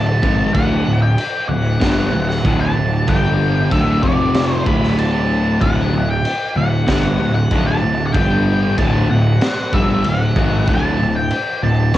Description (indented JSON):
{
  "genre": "quiet-loud alternative rock",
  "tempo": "95 BPM",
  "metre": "4/4",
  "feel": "straight",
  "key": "D major",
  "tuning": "A4 = 442 Hz",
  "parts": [
    { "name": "octave-fuzz lead guitar", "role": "melody", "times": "0.0-12.0 s", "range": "D5 to B5", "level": "-22 LUFS", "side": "left 1 dB", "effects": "distortion, cassette tape, tape echo" },
    { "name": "fuzz guitar", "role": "riff", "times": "0.0-12.0 s", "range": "D2 to G#3", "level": "-20 LUFS", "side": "left 5 dB", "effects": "distortion" },
    { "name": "thick fuzz guitar", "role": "riff", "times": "0.0-12.0 s", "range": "D2 to G#3", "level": "-21 LUFS", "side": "right 6 dB", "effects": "distortion" },
    { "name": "fuzz picked electric bass", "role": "bass", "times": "0.0-12.0 s", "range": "D1 to G#1", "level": "-19 LUFS", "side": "equal", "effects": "overdrive" },
    { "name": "raw garage drum kit", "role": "drums", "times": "0.2-12.0 s", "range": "crash cymbal, kick drum, snare drum", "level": "-20 LUFS", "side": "equal", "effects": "cassette tape" }
  ],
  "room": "little or no reverb",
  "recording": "home recording on cassette",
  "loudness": "-14 LUFS",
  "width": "side -13 dB against mid",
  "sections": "0.0-12.0 A section",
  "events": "none",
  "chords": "0.0 D; 3.1 G5; 3.7 D5; 4.0 F5; 4.7 D; 8.1 G5; 8.8 D"
}